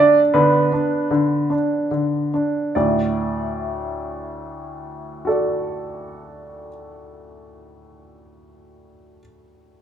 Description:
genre	classical-period piano sonatina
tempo	48 BPM (dotted quarters)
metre	6/8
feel	straight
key	D major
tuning	A4 = 440 Hz
part	clear baby grand piano	solo	0.0-9.8 s	D2 to D5	-18 LUFS	right 1 dB	none
room	moderate recital hall reverb, RT60 1.3 s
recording	minimal, uncompressed stereo recording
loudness	-18 LUFS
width	side -9 dB against mid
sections	0.0-2.8 A section; 2.8-7.7 B section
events	slowing down 0.0-2.8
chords	0.3 Bm/D; 2.8 D

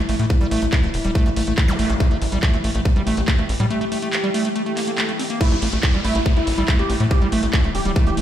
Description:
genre	psychedelic trance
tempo	141 BPM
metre	4/4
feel	straight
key	unclear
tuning	A4 = 439 Hz
part	evolving wavetable pad	sustained chords	0.0-8.2 s	E3 to G4	-27 LUFS	equal	chorus, built-in reverb, sidechain pumping
part	liquid acid bass	riff	0.0-8.2 s	G3 to C4	-24 LUFS	equal	chorus, auto-pan, sidechain pumping, dub echo
part	tight sequencer bass	bass	0.0-8.2 s	E1 to A2	-22 LUFS	equal	none
part	drum and bass drum kit	drums	0.1-8.2 s	crash cymbal, handclaps, hi-hat	-27 LUFS	equal	none
part	electronic kick drum	drums	0.3-8.0 s	none	-17 LUFS	equal	none
part	zap, swell and downlifter	sound effects	1.7-1.8, 4.7-8.2 s	none	-30 LUFS	equal	none
part	wide unison lead	melody	5.4-8.2 s	E4 to G4	-26 LUFS	equal	phaser, sidechain pumping, dub echo
room	light reverb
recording	played on a big sound system in a bare room, stone room reverb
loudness	-17 LUFS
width	side -11 dB against mid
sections	0.0-5.4 A section; 5.4-8.2 B section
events	break 3.7-5.4; swell 4.7-5.4; drop 5.4-8.2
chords	0.0 A5

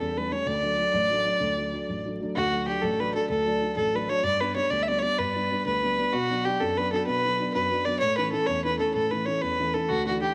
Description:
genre	celtic folk, Celtic slide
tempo	127 BPM (dotted quarters)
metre	12/8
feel	straight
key	D major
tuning	A4 = 440 Hz
part	rich fiddle	melody	0.0-10.3 s	F#4 to E5	-27 LUFS	equal	cassette tape
part	dark upright piano	accompaniment	0.0-10.3 s	A1 to D4	-32 LUFS	equal	cassette tape
room	light reverb, studio reverb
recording	home recording on cassette, vinyl crackle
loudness	-26 LUFS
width	mono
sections	0.0-2.4 A section; 2.4-10.3 A section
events	none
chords	0.5 D; 4.2 G; 6.1 Bm; 8.0 A

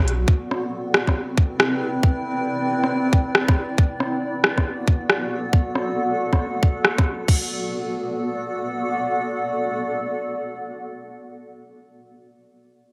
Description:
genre	future garage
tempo	137 BPM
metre	4/4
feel	swing 63% on 16ths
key	B phrygian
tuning	A4 = 435 Hz
part	granular cloud pad	sustained chords	0.1-11.3 s	B3 to G5	-27 LUFS	equal	built-in reverb, sidechain pumping
part	organic electronic drum kit	drums	0.0-7.4 s	crash cymbal, hi-hat, rim click	-24 LUFS	equal	overdrive, low-pass filter on hats, low-pass filter on snare, low-pass filter on cymbals, low-pass filter on room, gated reverb
part	electronic kick drum	drums	0.3-7.4 s	none	-20 LUFS	equal	overdrive
room	moderate plate reverb, RT60 2.1 s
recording	bright 1980s-style digital production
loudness	-22 LUFS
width	mono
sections	0.0-7.3 A section; 7.3-10.8 B section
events	none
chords	0.3 Cmaj9; 3.8 D6; 7.3 Bm7

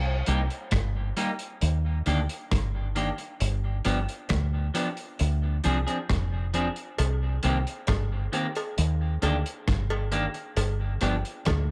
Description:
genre	roots reggae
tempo	67 BPM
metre	4/4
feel	straight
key	C minor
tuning	A4 = 440 Hz
part	deep dub fingered electric bass	bass	0.0-11.7 s	F1 to Eb2	-28 LUFS	equal	none
part	semi-hollow electric guitar	accompaniment	0.3-11.1 s	Eb3 to Ab4	-34 LUFS	equal	vibrato effect, dub echo
part	crunchy breakbeat drum kit	drums	0.3-11.7 s	hi-hat, kick drum, rim click	-34 LUFS	equal	none
part	cowbell	percussion	7.0-11.7 s	none	-38 LUFS	equal	none
room	light reverb, studio reverb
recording	none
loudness	-28 LUFS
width	mono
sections	0.0-11.7 A section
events	none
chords	0.0 Cm7; 1.6 Ebmaj7; 3.4 G7; 5.2 Dm7b5; 7.0 Cm7; 8.8 Ebmaj7; 10.6 G5

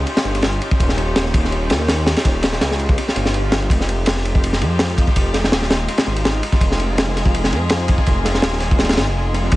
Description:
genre	drum and bass, jungle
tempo	165 BPM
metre	4/4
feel	straight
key	F minor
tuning	A4 = 440 Hz
part	warm chamber string section	sustained chords	0.0-9.6 s	Ab3 to Ab4	-25 LUFS	left 2 dB	none
part	dark detuned saw bass	bass	0.0-9.6 s	Eb1 to F2	-20 LUFS	equal	none
part	crunchy breakbeat drum kit	drums	0.1-9.6 s	kick drum, ride cymbal, snare drum	-17 LUFS	equal	tape echo
part	swell	sound effects	3.1-3.7 s	none	-31 LUFS	left 2 dB	none
room	light reverb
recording	echo-heavy mix, nothing above 10.4 kHz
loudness	-15 LUFS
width	side -17 dB against mid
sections	0.0-9.6 A section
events	kick drops out 3.0-3.7; swell 3.1-3.7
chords	0.0 Eb9; 3.7 Fm9

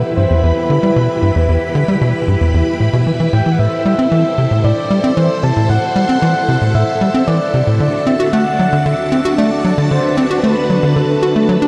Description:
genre	ambient, sequencer-driven space music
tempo	114 BPM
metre	4/4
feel	straight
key	A dorian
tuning	A4 = 441 Hz
part	breathy flute-like synth lead	melody	0.0-11.7 s	A4 to A5	-21 LUFS	equal	chorus, tape echo
part	string machine, full ensemble	sustained chords	0.0-11.7 s	D3 to B5	-21 LUFS	equal	phaser, ensemble chorus
part	tight sequencer bass	riff	0.0-11.7 s	E2 to F#4	-16 LUFS	equal	tape echo
room	wet huge ambient reverb, RT60 8.3 s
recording	lossy compression artefacts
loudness	-14 LUFS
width	mono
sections	0.0-11.7 A section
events	none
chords	0.0 Em; 3.6 Am; 7.8 D

